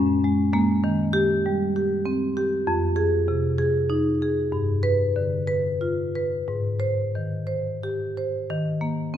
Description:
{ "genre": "classical, contemporary piece for solo marimba", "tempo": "59-67 BPM (dotted quarters)", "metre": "6/8", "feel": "rubato", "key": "Eb major", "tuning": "A4 = 440 Hz", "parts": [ { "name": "marimba with medium hard mallets", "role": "solo", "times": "0.0-9.2 s", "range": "F2 to C5", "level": "-21 LUFS", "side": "equal", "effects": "none" } ], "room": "wet recital hall reverb, RT60 1.6 s", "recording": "minimal, uncompressed stereo recording", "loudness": "-21 LUFS", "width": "side -10 dB against mid", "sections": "0.0-8.5 A section", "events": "none", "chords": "0.0 Gbadd9; 0.9 Eb6; 2.7 Fm7; 4.5 G7; 6.5 Abmaj7; 8.5 Eb5", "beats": "| 0.85 1.77 | 2.68 3.61 | 4.54 5.49 | 6.48 7.48 | 8.48" }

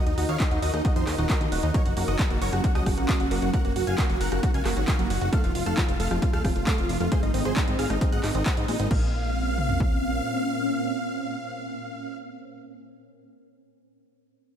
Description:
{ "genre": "uplifting trance", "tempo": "134 BPM", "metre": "4/4", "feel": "straight", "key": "Bb minor", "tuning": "A4 = 439 Hz", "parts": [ { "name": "big supersaw lead", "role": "melody", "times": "0.0-12.2 s", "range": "Eb4 to Ab5", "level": "-32 LUFS", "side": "right 1 dB", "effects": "sidechain pumping, ping-pong delay" }, { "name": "wide unison pluck", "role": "second line", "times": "0.0-12.2 s", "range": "Eb5 to Ab6", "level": "-37 LUFS", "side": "equal", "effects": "sidechain pumping, diffuse ambient delay" }, { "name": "shimmering ambient pad", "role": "sustained chords", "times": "0.0-12.2 s", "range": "Bb2 to Bb4", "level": "-31 LUFS", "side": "equal", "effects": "chorus, built-in reverb, phaser, sidechain pumping" }, { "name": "tight sequenced synth", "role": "arpeggios", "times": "0.0-9.1 s", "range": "F3 to Gb4", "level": "-33 LUFS", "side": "right 1 dB", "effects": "chorus, phaser, sidechain pumping, diffuse ambient delay" }, { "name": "plucky analog bass", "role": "bass", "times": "0.1-10.2 s", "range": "Eb1 to Ab2", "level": "-28 LUFS", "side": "equal", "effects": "sidechain pumping" }, { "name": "punchy analog drum machine", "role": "drums", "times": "0.1-9.0 s", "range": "crash cymbal, handclaps, hi-hat, rim click", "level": "-33 LUFS", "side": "right 1 dB", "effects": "overdrive, sidechain pumping on hats, sidechain pumping on cymbals" }, { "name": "punchy analog drum machine", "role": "drums", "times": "0.4-9.9 s", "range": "kick drum, toms", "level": "-25 LUFS", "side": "equal", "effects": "overdrive" } ], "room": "moderate lush hall reverb, RT60 1.9 s", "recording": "dreamy mix soaked in reverb", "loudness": "-22 LUFS", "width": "side -9 dB against mid", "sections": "0.0-8.9 A section; 8.9-12.5 B section", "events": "drop 0.0-8.9", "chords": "0.0 Ebm; 1.7 Gb; 5.3 F; 7.1 Abadd9; 8.9 Bbmadd9", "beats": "0.40 0.85 1.30 | 1.74 2.19 2.64 3.09 | 3.54 3.98 4.43 4.88 | 5.33 5.77 6.22 6.67 | 7.12 7.57 8.01 8.46 | 8.91 9.36 9.80 10.25 | 10.70 11.15 11.60 12.04" }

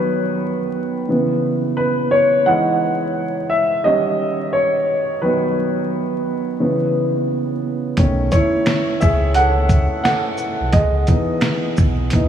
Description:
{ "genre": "lo-fi hip hop", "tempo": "87 BPM", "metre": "4/4", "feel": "swing 62% on 16ths", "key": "unclear", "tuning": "A4 = 440 Hz", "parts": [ { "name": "warm upright piano", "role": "accompaniment", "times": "0.0-12.3 s", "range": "C#3 to F#5", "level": "-17 LUFS", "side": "equal", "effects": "low-pass filter" }, { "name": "sub bass with octave", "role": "bass", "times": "8.0-12.3 s", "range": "B1 to D#2", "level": "-19 LUFS", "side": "equal", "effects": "none" }, { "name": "lo-fi sampler-style drum kit", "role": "drums", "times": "8.0-12.3 s", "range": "finger snaps, hi-hat, kick drum, shaker, snare drum", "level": "-18 LUFS", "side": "equal", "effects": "none" }, { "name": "finger snaps", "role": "percussion", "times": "8.7-11.6 s", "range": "none", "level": "-37 LUFS", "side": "right 5 dB", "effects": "none" } ], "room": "wet cathedral reverb, RT60 6.4 s", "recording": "dreamy mix soaked in reverb, vinyl crackle, small room ambience", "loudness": "-16 LUFS", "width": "side -9 dB against mid", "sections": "0.0-8.0 A section; 8.0-12.3 B section", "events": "upright piano solo 0.0-8.0, 8.0-12.3", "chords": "0.0 B/D#; 1.1 C#m7; 2.5 Emaj7; 3.8 D#7; 5.2 B/D#; 6.6 C#m7; 8.0 B9; 10.7 C#m9", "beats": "0.39 1.07 1.76 | 2.45 3.14 3.83 4.52 | 5.21 5.90 6.59 7.28 | 7.97 8.66 9.35 10.04 | 10.73 11.42 12.11" }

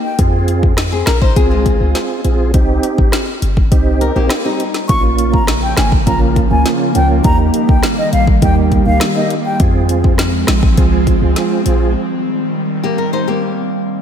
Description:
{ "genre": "dancehall", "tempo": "102 BPM", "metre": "4/4", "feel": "straight", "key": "unclear", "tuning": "A4 = 440 Hz", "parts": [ { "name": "mellow hollow silver concert flute", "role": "melody", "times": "0.0-0.2, 4.9-9.6 s", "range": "Eb5 to Db6", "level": "-20 LUFS", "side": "left 2 dB", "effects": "ping-pong delay" }, { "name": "tonewheel organ", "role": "accompaniment", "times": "0.2-11.9 s", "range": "Bb3 to Ab4", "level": "-19 LUFS", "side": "right 4 dB", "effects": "chorus vibrato, slow rotary speaker" }, { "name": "clean 808-style bass", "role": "bass", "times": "0.2-12.0 s", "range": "G1 to F2", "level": "-15 LUFS", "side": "equal", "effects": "none" }, { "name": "afro-pop drum kit", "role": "drums", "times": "0.2-11.8 s", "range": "hi-hat, kick drum, rim click, snare drum", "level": "-15 LUFS", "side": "equal", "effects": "none" }, { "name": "flamenco guitar", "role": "arpeggios", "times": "0.9-4.9, 12.8-14.0 s", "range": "G3 to C5", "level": "-21 LUFS", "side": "left 7 dB", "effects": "none" }, { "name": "airy breathy pad", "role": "sustained chords", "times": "5.2-14.0 s", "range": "Db3 to C4", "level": "-18 LUFS", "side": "right 2 dB", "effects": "chorus, sidechain pumping" } ], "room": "moderate lush hall reverb, RT60 2.5 s", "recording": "dreamy mix soaked in reverb", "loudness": "-11 LUFS", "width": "side -8 dB against mid", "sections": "0.0-14.0 A section", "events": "break 12.0-14.0", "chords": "0.2 Fm; 2.5 Cm; 4.9 Bbm; 7.2 Eb; 9.6 Fm; 12.0 Cm", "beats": "| 0.19 0.78 1.36 1.95 | 2.54 3.13 3.72 4.30 | 4.89 5.48 6.07 6.66 | 7.25 7.83 8.42 9.01 | 9.60 10.19 10.78 11.36 | 11.95 12.54 13.13 13.72" }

